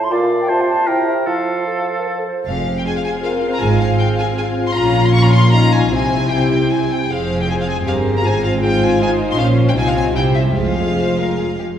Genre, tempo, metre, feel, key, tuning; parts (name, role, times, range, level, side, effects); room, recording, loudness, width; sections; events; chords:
quick classical-period movement for symphony orchestra; 143-161 BPM; 3/4; rubato; F minor; A4 = 443 Hz
dark clarinet; second line; 0.0-2.5 s; E4 to C5; -22 LUFS; equal
mellow hollow silver concert flute; second line; 0.0-2.1 s; E5 to C6; -21 LUFS; equal
mellow bassoon; accompaniment; 0.0-2.3 s; A2 to F3; -21 LUFS; right 3 dB
clear oboe; second line; 0.1-2.3 s; A4 to D5; -25 LUFS; right 1 dB
warm chamber violin section; melody; 2.5-11.6 s; E5 to Db6; -22 LUFS; left 3 dB
dark chamber violin section; second line; 2.5-11.7 s; Ab3 to F5; -24 LUFS; left 2 dB
warm chamber viola section; accompaniment; 2.5-11.6 s; Ab3 to Ab4; -22 LUFS; equal
dark studio double bass section; bass; 2.5-11.6 s; F1 to C2; -20 LUFS; right 2 dB
rich chamber cello section; bass; 2.5-11.6 s; F2 to C3; -20 LUFS; equal
warm French horn section; sustained chords; 2.9-11.6 s; Db4 to Bb4; -22 LUFS; left 4 dB
wet scoring stage reverb, RT60 2.0 s; heard from further back in the room; -14 LUFS; side -9 dB against mid
0.0-2.5 A section; 2.5-11.8 B section
0.1 Bb; 0.5 F/C; 1.3 F; 2.5 Fm; 3.6 Fm/Ab; 4.8 Bbm; 5.9 C; 7.1 Fm; 8.2 Fm/Ab; 9.4 Bbm; 9.8 Fm/C; 10.2 C; 10.6 Fm